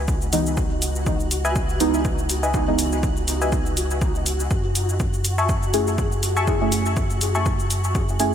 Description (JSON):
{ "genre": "dub techno", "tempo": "122 BPM", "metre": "4/4", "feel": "swing 56% on 16ths", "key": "C# minor", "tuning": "A4 = 440 Hz", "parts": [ { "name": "deep mellow chord stab", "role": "stabs", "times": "0.0-8.3 s", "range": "E3 to G#4", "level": "-25 LUFS", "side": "right 1 dB", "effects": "chorus, phaser, sidechain pumping, dub echo" }, { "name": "warm sub bass", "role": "bass", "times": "0.0-8.3 s", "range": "C#2 to F#2", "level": "-25 LUFS", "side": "equal", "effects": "tube saturation, sidechain pumping" }, { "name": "flickering grainy texture", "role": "texture", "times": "0.0-8.3 s", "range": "F#4", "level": "-31 LUFS", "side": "left 1 dB", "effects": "built-in reverb, ensemble chorus, sidechain pumping" }, { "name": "electronic kick drum", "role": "drums", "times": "0.1-8.1 s", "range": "none", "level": "-25 LUFS", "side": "equal", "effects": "overdrive, studio ambience" }, { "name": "electronic shaker and hi-hat", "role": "drums", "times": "0.1-8.3 s", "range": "none", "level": "-29 LUFS", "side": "equal", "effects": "overdrive, studio ambience" }, { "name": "filtered dub chord stab", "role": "riff", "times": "1.4-7.5 s", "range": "B4 to C#6", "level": "-28 LUFS", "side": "left 2 dB", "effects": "chorus, cassette tape, sidechain pumping, dub echo" } ], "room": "moderate huge ambient reverb, RT60 4.8 s", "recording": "dreamy mix soaked in reverb", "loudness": "-19 LUFS", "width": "side -9 dB against mid", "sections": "0.0-8.3 A section", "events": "none", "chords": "0.0 C#m7; 4.5 F#m7", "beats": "0.08 | 0.57 1.06 1.56 2.05 | 2.54 3.03 3.52 4.02 | 4.51 5.00 5.49 5.98 | 6.47 6.97 7.46 7.95" }